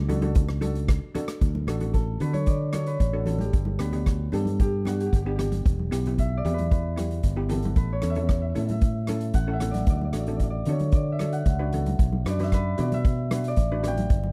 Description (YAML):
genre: calypso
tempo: 114 BPM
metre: 4/4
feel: straight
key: D major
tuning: A4 = 445 Hz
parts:
  - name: fingered electric bass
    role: bass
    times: 0.0-14.3 s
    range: E1 to D3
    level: -29 LUFS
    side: equal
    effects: none
  - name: steel pan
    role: accompaniment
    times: 0.1-14.1 s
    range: B3 to B4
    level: -36 LUFS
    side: equal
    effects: none
  - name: street-band drum kit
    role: drums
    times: 0.1-14.2 s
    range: hi-hat, kick drum, rim click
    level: -26 LUFS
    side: equal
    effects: none
  - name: congas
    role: percussion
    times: 0.1-14.3 s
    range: none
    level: -36 LUFS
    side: equal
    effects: none
  - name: concert harp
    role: melody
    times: 1.9-14.3 s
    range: F#4 to G5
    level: -35 LUFS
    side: equal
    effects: none
room: small room reverb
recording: dry, close 1970s-style studio recording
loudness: -25 LUFS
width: mono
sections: 0.0-1.4 A section; 1.4-14.3 B section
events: harp solo 1.4-14.3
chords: 0.0 Dmaj7; 1.4 D; 3.5 G; 5.6 Em; 7.8 A; 9.9 D; 12.0 Bm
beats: 0.36 0.89 | 1.42 1.94 2.47 3.00 | 3.53 4.06 4.59 5.12 | 5.65 6.18 6.71 7.24 | 7.76 8.29 8.82 9.35 | 9.88 10.41 10.93 11.46 | 11.99 12.52 13.04 13.57 | 14.10